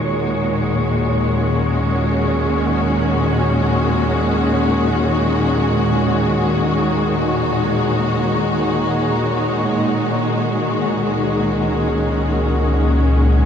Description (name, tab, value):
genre	ambient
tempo	free time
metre	none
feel	none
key	Eb minor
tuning	A4 = 440 Hz
part	clear studio string section	sustained chords	0.0-13.5 s	Bb2 to Gb4	-16 LUFS	equal	shimmer reverb
part	warm sub bass	bass	0.0-13.5 s	Db2 to Eb2	-23 LUFS	equal	none
part	wind-like tuned noise texture	texture	0.0-10.5 s	Db5 to Db6	-28 LUFS	right 1 dB	built-in reverb, shimmer reverb
part	mellow hollow alto flute	melody	10.4-13.5 s	Gb4 to Bb4	-29 LUFS	equal	none
part	felt-muted upright piano	arpeggios	10.5-13.5 s	none	barely audible	none	none
room	wet huge ambient reverb, RT60 8.0 s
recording	dark, warm production, nothing above 10.6 kHz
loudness	-15 LUFS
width	side -8 dB against mid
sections	0.0-10.5 A section; 10.5-13.5 B section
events	fade-out on sub bass 0.0-10.5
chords	0.0 Ebm; 10.5 Dbsus4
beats	free time